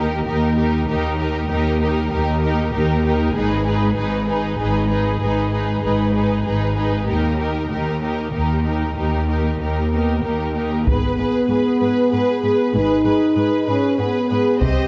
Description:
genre	cinematic, epic orchestral film score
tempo	96 BPM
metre	3/4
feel	straight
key	G# minor from 10.9 s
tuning	A4 = 440 Hz
part	rich symphonic violin section	melody	0.0-14.9 s	A#4 to Eb5	-28 LUFS	equal	none
part	warm symphonic violin section	second line	0.0-14.9 s	G4 to C5	-30 LUFS	equal	none
part	warm symphonic viola section	accompaniment	0.0-14.9 s	D#4 to G#4	-28 LUFS	equal	none
part	clear symphonic double bass section	bass	0.0-14.9 s	G#1 to D#2	-25 LUFS	equal	none
part	rich symphonic cello section	bass	0.0-14.7 s	D#2 to C3	-25 LUFS	equal	none
part	warm French horn section	sustained chords	9.9-14.9 s	A#3 to D#4	-22 LUFS	equal	none
part	taiko ensemble	drums	10.9-14.9 s	none	-23 LUFS	equal	none
room	moderate concert hall reverb, RT60 1.7 s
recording	dark, warm production, nothing above 7.9 kHz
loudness	-19 LUFS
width	mono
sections	0.0-10.9 A section; 10.9-14.9 B section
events	build-up 0.0-10.9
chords	0.0 D#; 3.4 G#m; 7.1 D#; 10.9 G#m

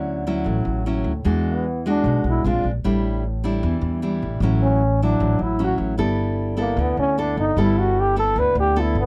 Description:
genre	bossa nova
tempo	152 BPM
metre	4/4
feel	straight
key	D major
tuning	A4 = 441 Hz
part	nylon-string guitar	accompaniment	0.0-9.1 s	A2 to A4	-26 LUFS	equal	none
part	upright bass	bass	0.0-9.1 s	G1 to E2	-25 LUFS	equal	none
part	warm trombone	melody	1.5-9.1 s	Bb3 to B4	-24 LUFS	equal	none
room	little or no reverb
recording	dry, close 1970s-style studio recording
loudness	-21 LUFS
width	mono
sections	0.0-9.1 A section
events	trombone solo 0.0-9.1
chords	0.0 Dmaj9; 1.3 E9; 2.4 Bb9; 2.8 A7sus4; 4.4 Dmaj9/A; 6.0 G69

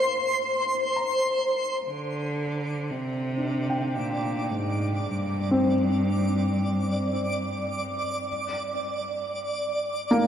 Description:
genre	ambient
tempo	56 BPM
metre	3/4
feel	straight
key	unclear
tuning	A4 = 440 Hz
part	felt-muted upright piano	arpeggios	0.0-10.3 s	Bb3 to C6	-28 LUFS	equal	tape echo
part	twinkling granular texture	texture	0.0-10.3 s	C5 to D6	-28 LUFS	equal	built-in reverb
part	clear cello	melody	1.8-7.7 s	G2 to D3	-28 LUFS	equal	tape echo
room	wet cathedral reverb, RT60 4.9 s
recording	none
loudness	-24 LUFS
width	side -9 dB against mid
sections	0.0-1.8 A section; 1.8-10.3 B section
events	fade-in on synth texture 1.8-10.3; fade-in on cello 1.8-10.3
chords	0.0 Bbsus2; 1.8 Gmadd11; 8.3 N.C.

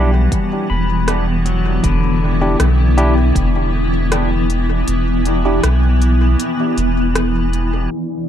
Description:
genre	ambient dub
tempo	79 BPM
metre	4/4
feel	straight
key	E minor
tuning	A4 = 439 Hz
part	granular cloud pad	sustained chords	0.0-8.3 s	E3 to E4	-19 LUFS	left 1 dB	built-in reverb
part	pedal steel guitar	arpeggios	0.0-4.4 s	D3 to B5	-25 LUFS	left 5 dB	low-pass filter, dub echo
part	tine electric piano	stabs	0.0-5.6 s	D4 to G4	-24 LUFS	right 2 dB	auto-pan, dub echo
part	soft dub sub bass	bass	0.0-7.9 s	E1 to B1	-16 LUFS	equal	none
part	electronic kick drum	drums	0.3-3.5 s	none	-19 LUFS	equal	none
part	organic electronic drum kit	drums	0.3-7.7 s	hi-hat, rim click	-24 LUFS	equal	dub echo
part	wind-like tuned noise texture	texture	8.0-8.3 s	D4 to D5	-37 LUFS	equal	built-in reverb
room	light reverb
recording	low-pass filter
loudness	-13 LUFS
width	side -10 dB against mid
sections	0.0-7.9 A section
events	kick drops out 4.9-7.9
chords	0.0 Em7

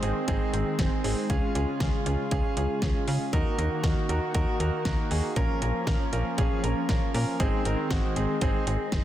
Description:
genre	synth-pop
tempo	118 BPM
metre	4/4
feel	straight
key	Db major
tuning	A4 = 440 Hz
part	clear grand piano	accompaniment	0.0-9.0 s	C4 to Bb4	-30 LUFS	right 2 dB	none
part	warm analog pad	sustained chords	0.0-9.0 s	Db3 to Gb4	-32 LUFS	left 1 dB	chorus, tremolo
part	slap-like FM bass	bass	0.0-9.0 s	Gb1 to Db3	-29 LUFS	equal	none
part	pop drum kit	drums	0.0-9.0 s	hi-hat, kick drum, snare drum	-28 LUFS	equal	none
room	light reverb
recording	dense, heavily limited modern master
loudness	-24 LUFS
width	side -12 dB against mid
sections	0.0-9.0 A section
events	none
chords	0.0 Ab; 1.3 Db; 3.3 Ebm; 5.4 Bbm; 7.4 Ab

